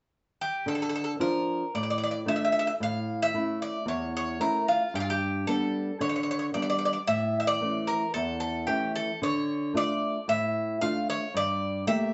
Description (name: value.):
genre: greek folk.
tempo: 112 BPM.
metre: 4/4.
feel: straight.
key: D harmonic minor.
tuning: A4 = 439 Hz.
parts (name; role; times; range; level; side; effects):
Greek bouzouki; melody; 0.4-12.1 s; F4 to F5; -31 LUFS; equal; none.
flamenco guitar; accompaniment; 0.7-12.1 s; E2 to G4; -32 LUFS; equal; none.
room: wet studio reverb, RT60 0.8 s.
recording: band playing live in one room, nothing above 7.9 kHz.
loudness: -28 LUFS.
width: mono.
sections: 0.7-12.1 A section.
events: none.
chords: 0.0 N.C.; 0.7 Dm; 2.8 A; 4.9 G; 7.1 A; 9.2 Dm; 11.3 Gmadd9.